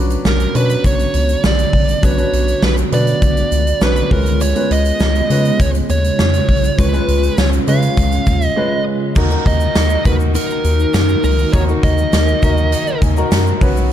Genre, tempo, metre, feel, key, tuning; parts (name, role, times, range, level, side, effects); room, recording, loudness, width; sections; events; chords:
1980s-style pop; 101 BPM; 4/4; straight; A4 = 440 Hz
warm baby grand piano; accompaniment; 0.0-13.9 s; F#3 to G#5; -22 LUFS; equal
glassy FM pad; sustained chords; 0.1-13.9 s; C#3 to A#4; -23 LUFS; equal; ensemble chorus, built-in reverb, phaser
round analog bass; bass; 0.0-13.9 s; A#1 to C#3; -16 LUFS; equal
big rock drum kit; drums; 0.1-13.8 s; crash cymbal, hi-hat, kick drum, snare drum, tambourine; -18 LUFS; equal
egg shaker; percussion; 0.1-13.9 s; -38 LUFS; left 13 dB
fuzz lead guitar; melody; 0.3-13.0 s; A#4 to E#5; -20 LUFS; right 3 dB; distortion, tape echo
biting overdriven guitar; accompaniment; 9.2-13.9 s; B2 to D#4; -27 LUFS; right 1 dB; wide subtle chorus
light reverb, small room reverb; dark, warm production; -12 LUFS; side -10 dB against mid
0.0-9.2 A section; 9.2-13.9 B section
break 8.6-9.2; grand piano fill 12.7-13.9
0.0 Bmadd9; 4.1 C#7; 9.2 D#m